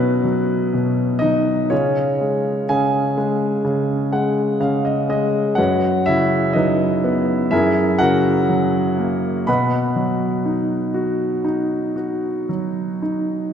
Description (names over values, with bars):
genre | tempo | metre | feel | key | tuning
classical, lyrical solo piano | 61 BPM | 4/4 | rubato | B major | A4 = 441 Hz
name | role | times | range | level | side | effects
clear grand piano | solo | 0.0-13.5 s | F#2 to B5 | -17 LUFS | equal | none
room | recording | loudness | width
wet church reverb, RT60 2.9 s | recorded in a church or concert hall | -17 LUFS | side -8 dB against mid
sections
0.0-13.5 A section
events
grand piano fill 3.7-5.6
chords
0.0 Bsus2; 1.7 C#; 5.6 F#sus4; 7.5 F#add9; 9.5 B